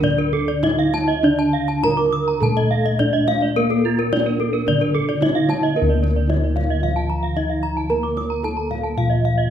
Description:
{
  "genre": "Balinese gamelan",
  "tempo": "100-112 BPM",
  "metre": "4/4",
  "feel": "straight",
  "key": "D pelog",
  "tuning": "A4 = 440 Hz",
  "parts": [
    { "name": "gamelan-type bronze metallophone", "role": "melody", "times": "0.0-9.5 s", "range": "Bb3 to Bb4", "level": "-23 LUFS", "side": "equal", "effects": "none" },
    { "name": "gamelan-type bronze metallophone", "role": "accompaniment", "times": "0.0-9.5 s", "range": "D3 to Bb3", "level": "-28 LUFS", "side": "right 1 dB", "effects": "none" },
    { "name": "gamelan-type bronze metallophone", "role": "arpeggios", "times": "0.0-9.4 s", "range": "A4 to Eb6+35c", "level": "-24 LUFS", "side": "left 6 dB", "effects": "none" },
    { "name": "gamelan-type bronze metallophone", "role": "arpeggios", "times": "0.0-9.5 s", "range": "F4 to D6", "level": "-26 LUFS", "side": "right 8 dB", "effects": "none" },
    { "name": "gamelan-type bossed gongs", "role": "bass", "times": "0.0-9.5 s", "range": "D2 to Bb4", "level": "-22 LUFS", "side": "equal", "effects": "none" },
    { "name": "kendang", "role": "percussion", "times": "0.0-9.1 s", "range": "none", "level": "-29 LUFS", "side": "right 3 dB", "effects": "none" }
  ],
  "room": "moderate recital hall reverb, RT60 1.7 s",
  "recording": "minimal, uncompressed stereo recording",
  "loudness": "-17 LUFS",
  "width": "side -9 dB against mid",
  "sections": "0.0-5.8 A section; 5.8-9.5 B section",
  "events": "none",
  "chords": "none"
}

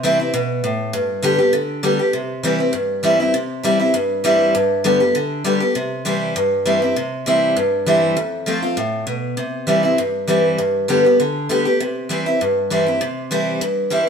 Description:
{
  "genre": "bluegrass",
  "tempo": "198 BPM",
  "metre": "4/4",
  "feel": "swing 53% on 8ths",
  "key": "C major",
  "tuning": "A4 = 440 Hz",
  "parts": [
    { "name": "picked steel-string acoustic guitar", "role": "solo", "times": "0.0-14.1 s", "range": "F2 to G4", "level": "-16 LUFS", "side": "equal", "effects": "none" }
  ],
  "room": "moderate stone room reverb, RT60 1.1 s",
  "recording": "band playing live in one room",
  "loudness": "-16 LUFS",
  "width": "side -6 dB against mid",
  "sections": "0.0-7.0 A section; 7.0-14.1 A section",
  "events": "none",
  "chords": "0.0 C; 0.9 G; 2.1 C; 4.5 G; 5.8 C; 8.2 F; 9.4 C; 10.6 G; 11.8 C"
}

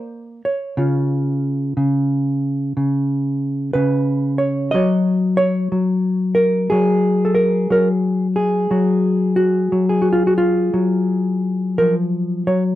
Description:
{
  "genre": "solo jazz",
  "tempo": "60 BPM",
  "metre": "4/4",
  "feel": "swing 66% on 8ths, rubato",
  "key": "F# major",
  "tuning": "A4 = 441 Hz",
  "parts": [
    { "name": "hollow-body jazz guitar", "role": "solo", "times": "0.0-12.8 s", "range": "C#3 to D#5", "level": "-16 LUFS", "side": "equal", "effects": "none" }
  ],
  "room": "light reverb",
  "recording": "dark, warm production",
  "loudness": "-16 LUFS",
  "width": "side -14 dB against mid",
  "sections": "0.0-12.8 A section",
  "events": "none",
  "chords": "0.0 A#; 0.8 C#; 4.7 F#69"
}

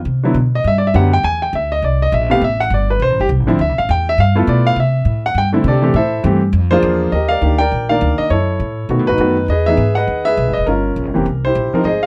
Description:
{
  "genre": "jazz piano trio",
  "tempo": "204 BPM",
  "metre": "4/4",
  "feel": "swing 60% on 8ths",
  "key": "unclear",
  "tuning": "A4 = 440 Hz",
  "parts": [
    { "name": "upright bass", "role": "bass", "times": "0.0-12.1 s", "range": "E1 to C3", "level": "-19 LUFS", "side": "equal", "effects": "none" },
    { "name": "warm baby grand piano", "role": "melody", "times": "0.2-12.1 s", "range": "C3 to Ab5", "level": "-17 LUFS", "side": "equal", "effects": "none" }
  ],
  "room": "little or no reverb",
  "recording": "close, detailed microphones",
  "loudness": "-15 LUFS",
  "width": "mono",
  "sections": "0.0-7.1 A section; 7.1-12.1 B section",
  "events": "grand piano solo 0.0-7.1",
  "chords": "0.1 Cmaj9#11; 1.2 E7(no3); 2.4 Am7; 3.6 Dsus2; 4.2 G13; 4.8 C69; 5.9 Am7; 6.5 Bb7; 7.1 Ebmaj7; 8.3 Gbm7; 8.9 B7; 9.5 Emaj7; 10.7 Gm7b5; 11.3 C7"
}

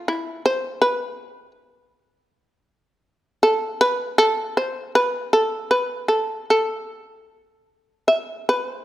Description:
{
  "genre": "japanese traditional",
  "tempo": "72-81 BPM",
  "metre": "4/4",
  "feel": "rubato",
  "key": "A hirajoshi",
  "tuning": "A4 = 440 Hz",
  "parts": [
    { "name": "shamisen", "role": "solo", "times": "0.0-8.8 s", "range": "E4 to E5", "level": "-19 LUFS", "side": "equal", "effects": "none" }
  ],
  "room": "light reverb",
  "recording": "none",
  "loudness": "-19 LUFS",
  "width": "side -14 dB against mid",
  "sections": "0.0-8.5 A section",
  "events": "none",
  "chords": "none"
}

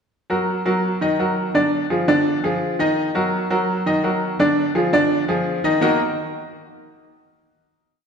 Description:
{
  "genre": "latin",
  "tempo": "168 BPM",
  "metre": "4/4",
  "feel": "straight",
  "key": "Eb harmonic minor",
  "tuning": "A4 = 440 Hz",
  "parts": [
    { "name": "bright upright piano", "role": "solo", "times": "0.3-6.0 s", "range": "D3 to Eb5", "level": "-18 LUFS", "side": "equal", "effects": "none" }
  ],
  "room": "wet scoring stage reverb, RT60 1.9 s",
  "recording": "recorded in a church or concert hall",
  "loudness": "-17 LUFS",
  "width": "side -6 dB against mid",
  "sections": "0.1-5.8 montuno (vamp); 5.8-7.2 final chord",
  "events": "none",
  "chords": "0.1 Ebm; 1.5 Ddim; 3.0 Ebm; 4.4 Ddim; 5.8 Ebm"
}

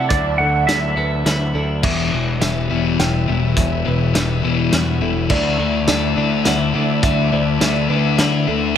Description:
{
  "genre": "post-rock",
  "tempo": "104 BPM",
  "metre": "3/4",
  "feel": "straight",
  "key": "unclear",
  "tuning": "A4 = 440 Hz",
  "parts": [
    { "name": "clean lap steel guitar", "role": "melody", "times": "0.0-1.5 s", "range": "D5 to F#5", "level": "-21 LUFS", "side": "right 3 dB", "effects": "tape echo" },
    { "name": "muted studio string section", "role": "sustained chords", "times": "0.0-8.8 s", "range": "F#3 to E5", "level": "-28 LUFS", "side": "right 2 dB", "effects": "none" },
    { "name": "felt-muted upright piano", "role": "arpeggios", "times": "0.0-8.8 s", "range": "A4 to G5", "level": "-28 LUFS", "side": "right 6 dB", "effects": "tape echo" },
    { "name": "twelve-string electric guitar", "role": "arpeggios", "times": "0.0-8.8 s", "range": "E2 to F#4", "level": "-25 LUFS", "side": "left 2 dB", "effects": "tape echo" },
    { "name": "growling picked electric bass", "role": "bass", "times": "0.0-8.8 s", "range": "E1 to D3", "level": "-22 LUFS", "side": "equal", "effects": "overdrive" },
    { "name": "loose indie drum kit", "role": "drums", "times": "0.1-8.3 s", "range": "crash cymbal, hi-hat, kick drum, snare drum", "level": "-21 LUFS", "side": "equal", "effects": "none" },
    { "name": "thick fuzz guitar", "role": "riff", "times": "1.8-8.7 s", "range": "E2 to D4", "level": "-19 LUFS", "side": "left 8 dB", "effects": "distortion" }
  ],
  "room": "light reverb, studio reverb",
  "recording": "none",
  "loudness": "-15 LUFS",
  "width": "side -9 dB against mid",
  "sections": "0.0-1.8 A section; 1.8-8.8 B section",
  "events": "build-up 1.8-8.8",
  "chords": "0.0 Dadd9; 1.8 Emadd9; 5.3 Dsus2"
}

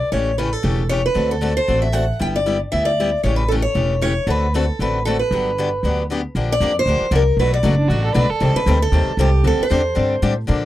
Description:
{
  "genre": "acoustic string swing (jazz manouche)",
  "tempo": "232 BPM",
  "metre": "4/4",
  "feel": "swing 56% on 8ths",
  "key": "unclear",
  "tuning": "A4 = 443 Hz",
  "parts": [
    { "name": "picked steel-string acoustic guitar", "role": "melody", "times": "0.0-10.3 s", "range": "G4 to G5", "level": "-20 LUFS", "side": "equal", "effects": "none" },
    { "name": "picked steel-string acoustic guitar", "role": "accompaniment", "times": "0.1-10.7 s", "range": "B2 to A4", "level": "-23 LUFS", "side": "left 4 dB", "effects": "none" },
    { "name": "upright bass", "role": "bass", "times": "0.1-10.7 s", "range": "E1 to Bb2", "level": "-19 LUFS", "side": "equal", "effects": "none" },
    { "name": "warm violin", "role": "second line", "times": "7.8-8.5 s", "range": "D4 to B4", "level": "-24 LUFS", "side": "right 5 dB", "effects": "none" }
  ],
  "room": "little or no reverb",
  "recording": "dry, close 1970s-style studio recording",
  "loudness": "-16 LUFS",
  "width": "side -14 dB against mid",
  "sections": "0.0-6.3 A section; 6.3-10.7 B section",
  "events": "none",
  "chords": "0.1 A7; 1.2 D7; 2.2 G6; 3.2 A7; 4.3 D7; 5.3 Gmaj7; 6.3 Bb6; 7.4 Bm7; 8.4 Cm6; 9.4 D9sus4"
}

